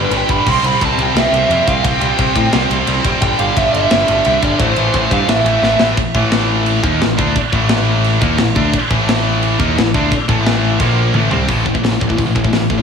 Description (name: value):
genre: heavy metal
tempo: 174 BPM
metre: 4/4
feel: straight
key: A minor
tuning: A4 = 441 Hz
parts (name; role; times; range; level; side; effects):
- bluesy overdriven lead guitar; melody; 0.0-5.8 s; B4 to C6; -17 LUFS; right 2 dB; distortion, slapback echo, tape echo
- heavy high-gain guitar; riff; 0.0-12.8 s; G2 to D#4; -16 LUFS; equal; distortion, slapback echo
- growling picked electric bass; bass; 0.0-12.8 s; F1 to A2; -18 LUFS; left 1 dB; overdrive
- tight metal drum kit; drums; 0.1-12.8 s; crash cymbal, hi-hat, kick drum, ride cymbal, snare drum, toms; -18 LUFS; left 1 dB; none
room: wet recital hall reverb, RT60 1.6 s, small room ambience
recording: big arena sound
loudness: -12 LUFS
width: side -6 dB against mid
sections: 0.0-6.0 A section; 6.0-11.5 B section; 11.5-12.8 C section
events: half time 0.0-6.0; drum fill 5.6-6.0, 11.1-11.5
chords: 0.5 C5; 3.2 G5; 4.6 Am; 6.0 A5; 10.8 Bb5; 11.1 Am; 11.5 A5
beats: 0.12 | 0.46 0.81 1.16 1.50 | 1.84 2.19 2.53 2.88 | 3.22 3.57 3.91 4.25 | 4.60 4.94 5.29 5.63 | 5.97 6.32 6.66 7.01 | 7.35 7.70 8.04 8.38 | 8.73 9.07 9.42 9.76 | 10.11 10.45 10.80 11.14 | 11.49 11.84 12.19 12.53